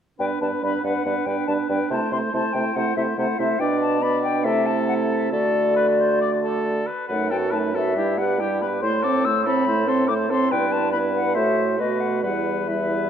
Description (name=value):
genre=quick classical-period movement for wind quintet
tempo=140 BPM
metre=4/4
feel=straight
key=G major, E minor from 7.1 s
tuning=A4 = 440 Hz
part: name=mellow concert flute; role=melody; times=0.2-13.1 s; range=D5 to E6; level=-26 LUFS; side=left 6 dB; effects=none
part: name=warm oboe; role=second line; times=0.2-13.1 s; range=G4 to D5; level=-28 LUFS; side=left 3 dB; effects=none
part: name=mellow French horn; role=accompaniment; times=0.2-13.1 s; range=G3 to C4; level=-28 LUFS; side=right 1 dB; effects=none
part: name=warm clarinet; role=accompaniment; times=0.2-13.1 s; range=C4 to G4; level=-27 LUFS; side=right 7 dB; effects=none
part: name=mellow bassoon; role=bass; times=0.2-13.1 s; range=E2 to D3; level=-25 LUFS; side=right 1 dB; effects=none
room=wet scoring stage reverb, RT60 1.9 s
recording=dark, warm production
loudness=-19 LUFS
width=side -8 dB against mid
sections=0.2-13.1 A section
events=none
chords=0.2 G; 1.9 Am/C; 3.6 Bm7; 4.5 Am/C; 5.3 D; 7.1 B7/F#; 8.0 Em/G; 8.8 Am; 10.5 Em/G; 11.4 F#m7b5/A; 11.8 B7; 12.2 Em